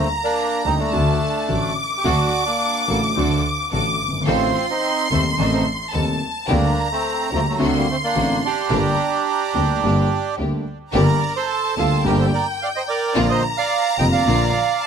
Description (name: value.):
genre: tango.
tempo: 108 BPM.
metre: 4/4.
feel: rubato.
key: G minor.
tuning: A4 = 440 Hz.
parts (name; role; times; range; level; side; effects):
bandoneon; melody; 0.0-14.9 s; F3 to G5; -22 LUFS; right 4 dB; none.
rich studio violin section; second line; 0.0-14.9 s; G5 to D6; -24 LUFS; left 1 dB; none.
warm grand piano; accompaniment; 0.0-14.5 s; Eb1 to G4; -22 LUFS; left 1 dB; none.
clear double bass; bass; 0.0-14.5 s; F1 to Eb2; -24 LUFS; right 1 dB; none.
clear symphonic string section; stabs; 2.0-14.5 s; Bb3 to A4; -27 LUFS; left 3 dB; none.
room: moderate booth ambience, RT60 0.2 s.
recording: none.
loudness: -17 LUFS.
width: side -7 dB against mid.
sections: 0.0-10.9 A section; 10.9-14.9 A section.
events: none.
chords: 0.0 Gm; 0.9 D; 4.3 Adim; 6.5 Gm/D; 7.6 D7; 8.7 Gm; 13.2 Bb.